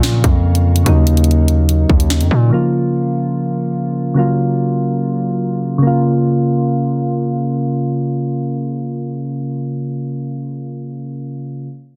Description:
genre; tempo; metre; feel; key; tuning
hip hop, drill; 145 BPM; 4/4; half-time; Bb minor; A4 = 441 Hz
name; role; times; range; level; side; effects
soft electric-piano-like synth keys; accompaniment; 0.0-11.7 s; Db3 to F4; -19 LUFS; equal; chorus, low-pass filter
distorted 808-style bass; bass; 0.0-2.5 s; Eb2 to Bb2; -14 LUFS; equal; distortion
drill drum kit; drums; 0.0-2.3 s; hi-hat, kick drum, snare drum; -18 LUFS; equal; none
room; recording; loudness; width
light reverb, digital ambience; dense, heavily limited modern master; -16 LUFS; mono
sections
0.0-5.8 A section; 5.8-9.1 B section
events
filter sweep on synth keys 0.0-5.8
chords
0.0 Bbm; 0.9 Ebm7; 2.5 Bbm; 4.2 Gbmaj7; 5.8 Bbm

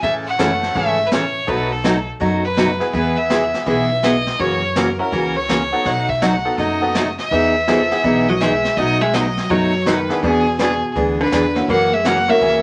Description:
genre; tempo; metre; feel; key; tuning
country, western swing; 165 BPM; 4/4; swing 65% on 8ths; E major; A4 = 439 Hz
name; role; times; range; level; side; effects
clear fiddle; melody; 0.0-12.6 s; G#4 to F#5; -22 LUFS; equal; none
picked steel-string acoustic guitar; accompaniment; 0.0-12.6 s; B2 to A4; -22 LUFS; equal; none
upright bass; bass; 0.0-12.6 s; F#1 to F#2; -30 LUFS; equal; none
vintage brush drum kit; drums; 0.0-12.6 s; brushed snare drum, hi-hat, kick drum, snare drum; -28 LUFS; equal; none
tack piano; accompaniment; 0.4-12.4 s; A3 to B4; -26 LUFS; equal; none
vintage hollow-body jazz guitar; second line; 8.3-12.6 s; B2 to A#3; -22 LUFS; equal; none
room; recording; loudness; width
wet studio reverb, RT60 0.6 s; none; -18 LUFS; mono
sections
0.0-12.6 A section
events
none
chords
0.0 A; 1.5 B7; 2.9 E; 4.4 F#7; 5.9 B7; 7.3 Emaj7; 8.8 B7; 10.2 E7; 11.7 F#7

